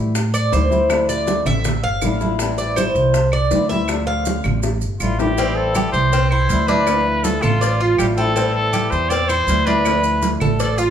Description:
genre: latin, Cuban son and guajira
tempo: 161 BPM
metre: 4/4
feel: straight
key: A minor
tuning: A4 = 440 Hz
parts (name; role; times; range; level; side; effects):
- flamenco guitar; accompaniment; 0.0-10.6 s; D3 to E4; -25 LUFS; left 4 dB; none
- upright bass; bass; 0.0-10.9 s; G1 to A2; -21 LUFS; right 1 dB; none
- bongos and cowbell; percussion; 0.2-10.8 s; none; -27 LUFS; left 6 dB; none
- congas; percussion; 0.2-10.9 s; none; -25 LUFS; right 3 dB; none
- maracas; percussion; 0.2-10.9 s; none; -33 LUFS; right 5 dB; none
- Cuban tres; arpeggios; 0.3-10.9 s; C4 to F5; -21 LUFS; right 1 dB; none
- claves; percussion; 0.3-10.6 s; none; -32 LUFS; right 2 dB; none
- breathy trumpet; melody; 5.0-10.9 s; F4 to D5; -20 LUFS; equal; none
room: moderate large studio reverb, RT60 0.9 s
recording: band playing live in one room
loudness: -15 LUFS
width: side -9 dB against mid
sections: 0.0-5.4 A section; 5.4-10.9 B section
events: Cuban tres solo 0.0-5.4; drum fill 4.6-5.4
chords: 0.0 Am7; 0.9 Dmadd9; 2.4 Am7; 3.9 Dmadd9; 5.4 Am7; 6.9 Dmadd9; 8.4 Am7; 9.9 Dmadd9

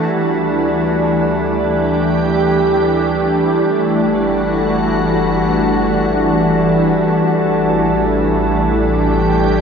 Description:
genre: ambient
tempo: free time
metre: none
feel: none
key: unclear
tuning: A4 = 440 Hz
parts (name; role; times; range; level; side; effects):
- soft additive organ-like pad; sustained chords; 0.0-9.6 s; E3 to G4; -14 LUFS; right 1 dB; ensemble chorus, built-in reverb
- warm sub bass; bass; 0.0-9.6 s; G1 to D2; -26 LUFS; right 1 dB; none
- pedal harmonium; drone; 0.0-9.6 s; G3 to A3; -20 LUFS; left 2 dB; none
- glass harmonica; texture; 0.0-9.6 s; A4 to A5; -24 LUFS; left 1 dB; none
room: wet cathedral reverb, RT60 5.4 s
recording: in a vast, echoing space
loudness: -13 LUFS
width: side -6 dB against mid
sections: 0.0-9.6 A section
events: fade-in on sub bass 0.0-9.6; fade-in on glass harmonica 0.0-9.6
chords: 0.0 Dsus24; 3.7 Gsus2; 7.3 A5

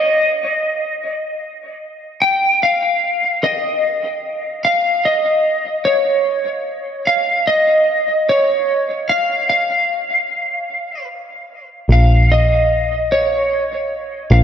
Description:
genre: post-rock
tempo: 50 BPM (dotted quarters)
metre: 6/8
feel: straight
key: Bb dorian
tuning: A4 = 438 Hz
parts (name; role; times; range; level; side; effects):
- lightly driven lead guitar; melody; 0.0-14.4 s; Db5 to G5; -15 LUFS; equal; lush chorus, diffuse ambient delay
- overdriven picked electric bass; bass; 11.9-14.4 s; Bb1; -12 LUFS; equal; none
room: wet plate reverb, RT60 3.0 s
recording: dreamy mix soaked in reverb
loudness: -14 LUFS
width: side -9 dB against mid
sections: 0.0-11.9 A section; 11.9-14.4 A section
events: none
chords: 0.0 N.C.; 11.9 Bbm

